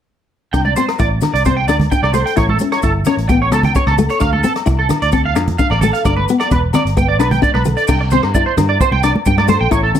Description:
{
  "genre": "highlife guitar band",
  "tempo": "131 BPM",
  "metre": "4/4",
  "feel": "straight",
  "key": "C major",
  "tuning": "A4 = 440 Hz",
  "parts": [
    { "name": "picked steel-string acoustic guitar", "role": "accompaniment", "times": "0.5-10.0 s", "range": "A3 to E4", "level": "-18 LUFS", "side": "left 6 dB", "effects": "none" },
    { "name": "electric guitar at the edge of break-up", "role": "arpeggios", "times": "0.5-9.9 s", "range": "A4 to G5", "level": "-18 LUFS", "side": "right 5 dB", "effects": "analog chorus, slapback echo" },
    { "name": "fingered electric bass", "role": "bass", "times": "0.5-9.9 s", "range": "E1 to G2", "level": "-18 LUFS", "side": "right 1 dB", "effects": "none" },
    { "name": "vintage drum kit", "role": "drums", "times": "0.5-10.0 s", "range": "crash cymbal, hi-hat, kick drum, rim click", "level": "-20 LUFS", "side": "right 1 dB", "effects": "none" },
    { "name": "agogo bells", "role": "percussion", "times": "0.5-9.8 s", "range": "none", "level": "-26 LUFS", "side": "left 13 dB", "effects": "none" },
    { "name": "maracas", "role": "percussion", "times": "0.5-10.0 s", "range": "none", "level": "-33 LUFS", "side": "left 15 dB", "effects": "none" },
    { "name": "congas", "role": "percussion", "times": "0.7-10.0 s", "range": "none", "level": "-20 LUFS", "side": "right 3 dB", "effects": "none" }
  ],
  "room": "light reverb",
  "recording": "none",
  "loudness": "-12 LUFS",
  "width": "side -9 dB against mid",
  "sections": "0.5-7.9 A section; 7.9-10.0 B section",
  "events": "none",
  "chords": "0.5 Csus2; 2.4 A7; 4.2 Dm; 6.0 G; 7.9 Csus2",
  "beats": "| 0.53 0.99 1.45 1.91 | 2.37 2.83 3.29 3.75 | 4.21 4.67 5.13 5.59 | 6.05 6.51 6.97 7.43 | 7.88 8.34 8.80 9.26 | 9.72"
}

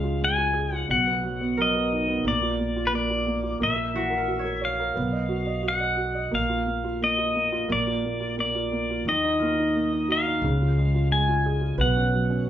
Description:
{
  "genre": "acoustic folk-pop ballad",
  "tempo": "88 BPM",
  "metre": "4/4",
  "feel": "straight",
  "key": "unclear",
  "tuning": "A4 = 440 Hz",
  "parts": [
    { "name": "pedal steel guitar", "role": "melody", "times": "0.0-12.5 s", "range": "Cb5 to Ab5", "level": "-26 LUFS", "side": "left 1 dB", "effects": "none" },
    { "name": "felt-muted upright piano", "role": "accompaniment", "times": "0.0-12.5 s", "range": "B2 to D#5", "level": "-27 LUFS", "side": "right 1 dB", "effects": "none" },
    { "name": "concert harp", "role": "arpeggios", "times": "0.0-12.5 s", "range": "F4 to Db5", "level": "-33 LUFS", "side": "right 2 dB", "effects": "none" },
    { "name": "upright bass", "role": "bass", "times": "0.0-12.5 s", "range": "Bb1 to Eb2", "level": "-30 LUFS", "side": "equal", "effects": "none" }
  ],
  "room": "wet large studio reverb, RT60 0.8 s",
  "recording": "band playing live in one room, nothing above 7.7 kHz",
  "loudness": "-22 LUFS",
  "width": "side -11 dB against mid",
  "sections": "0.0-12.5 A section",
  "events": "none",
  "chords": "0.0 Db; 0.9 B; 2.3 Bb; 3.6 Gb7/Bb; 5.0 B; 6.3 Bbsus4; 9.1 Ebm; 10.4 Db; 11.8 Bsus2",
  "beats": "0.22 | 0.90 1.58 2.25 2.93 | 3.61 4.29 4.97 5.65 | 6.33 7.01 7.69 8.37 | 9.06 9.74 10.42 11.10 | 11.78 12.46"
}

